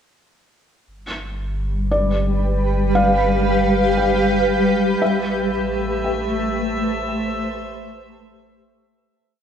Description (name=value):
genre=ambient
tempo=58 BPM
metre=4/4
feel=straight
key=G mixolydian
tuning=A4 = 443 Hz
part: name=granular cloud pad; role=sustained chords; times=1.8-9.2 s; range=G3 to F5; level=-19 LUFS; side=equal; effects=built-in reverb
part: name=warm sub bass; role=bass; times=0.9-9.1 s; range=G1 to A1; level=-25 LUFS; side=equal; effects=none
part: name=felt-muted upright piano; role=arpeggios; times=1.9-9.4 s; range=D5 to A5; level=-24 LUFS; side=equal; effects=ping-pong delay
part: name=drifting glass-harmonics texture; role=texture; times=5.4-9.2 s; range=E5 to E6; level=-29 LUFS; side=right 1 dB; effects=chorus, built-in reverb
room=wet concert hall reverb, RT60 2.2 s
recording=cassette tape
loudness=-17 LUFS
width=side -8 dB against mid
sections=0.9-9.2 A section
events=fade-out on felt piano 0.9-9.2; fade-out on sub bass 0.9-9.2; fade-out 5.0-9.2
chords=0.9 G7; 5.0 Am9